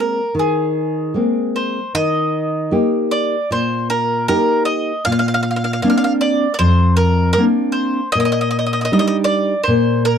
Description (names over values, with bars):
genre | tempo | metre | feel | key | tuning
italian folk | 78 BPM | 4/4 | rubato | Eb major | A4 = 442 Hz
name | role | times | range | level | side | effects
bowl-back mandolin | melody | 0.0-10.2 s | Ab4 to F5 | -19 LUFS | right 1 dB | none
nylon-string guitar | accompaniment | 0.0-10.2 s | F2 to G4 | -16 LUFS | left 1 dB | none
room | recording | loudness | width
light reverb | dry, close 1970s-style studio recording | -15 LUFS | side -8 dB against mid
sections
0.0-1.9 A section; 1.9-10.2 B section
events
none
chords
0.0 Abadd9; 1.9 Eb; 5.1 Bbadd9; 8.1 Ebmaj7/Bb